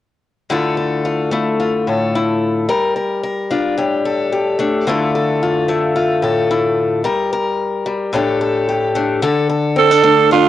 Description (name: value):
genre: highlife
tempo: 110 BPM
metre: 4/4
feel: swing 55% on 16ths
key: D minor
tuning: A4 = 443 Hz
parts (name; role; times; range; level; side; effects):
- picked acoustic archtop guitar; accompaniment; 0.5-10.5 s; A2 to Bb4; -15 LUFS; left 3 dB; cassette tape
- raspy tenor saxophone; melody; 9.8-10.5 s; F4 to A4; -9 LUFS; right 7 dB; cassette tape
room: light reverb, small room reverb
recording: home recording on cassette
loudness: -14 LUFS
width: side -12 dB against mid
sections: 0.5-9.2 A section; 9.2-10.5 B section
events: none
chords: 0.5 Dmadd9; 2.7 Gm7; 3.8 A7sus4; 4.9 Dmadd9; 7.0 Gm; 8.1 A7sus4; 9.2 D5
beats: | 0.50 1.05 1.59 2.14 | 2.69 3.23 3.78 4.32 | 4.87 5.41 5.96 6.50 | 7.05 7.59 8.14 8.68 | 9.22 9.77 10.31